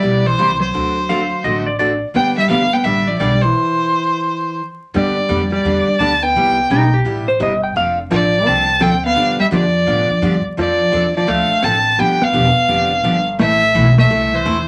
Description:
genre	country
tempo	171 BPM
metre	4/4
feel	swing 64% on 8ths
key	unclear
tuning	A4 = 440 Hz
part	clear fiddle	melody	0.0-14.7 s	C5 to A5	-18 LUFS	equal	none
part	hollow-body jazz guitar	second line	0.0-14.7 s	E3 to D4	-22 LUFS	equal	none
part	picked steel-string acoustic guitar	accompaniment	0.0-14.6 s	C3 to A4	-24 LUFS	equal	none
part	upright bass	bass	0.0-14.7 s	E1 to A2	-23 LUFS	equal	none
part	clean lap steel guitar	second line	1.1-2.1, 6.7-8.0 s	Eb4 to G5	-20 LUFS	equal	none
room	wet club reverb, RT60 0.5 s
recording	vinyl crackle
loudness	-16 LUFS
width	mono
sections	0.0-4.9 A section; 4.9-14.7 B section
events	stop 3.5-4.9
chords	0.0 Cmaj7; 0.7 D7; 2.1 G; 3.5 N.C.; 4.9 G; 6.4 Cmaj7; 7.8 F6; 9.2 G7; 10.6 F6; 12.0 G7; 13.4 Am

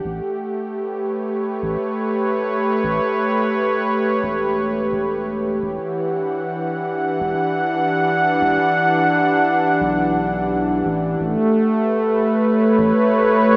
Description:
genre	ambient dub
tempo	86 BPM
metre	4/4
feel	swing 53% on 16ths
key	unclear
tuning	A4 = 440 Hz
part	warm analog pad	sustained chords	0.0-13.6 s	E3 to F#5	-16 LUFS	equal	chorus
part	soft dub sub bass	bass	0.0-12.9 s	E1 to B1	-27 LUFS	equal	none
room	wet spring reverb, RT60 1.5 s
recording	small speaker sound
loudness	-16 LUFS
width	side -26 dB against mid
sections	0.0-13.6 A section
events	fade-in on analog synth pad 0.0-13.6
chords	0.0 A9; 5.6 Em9; 11.2 A9

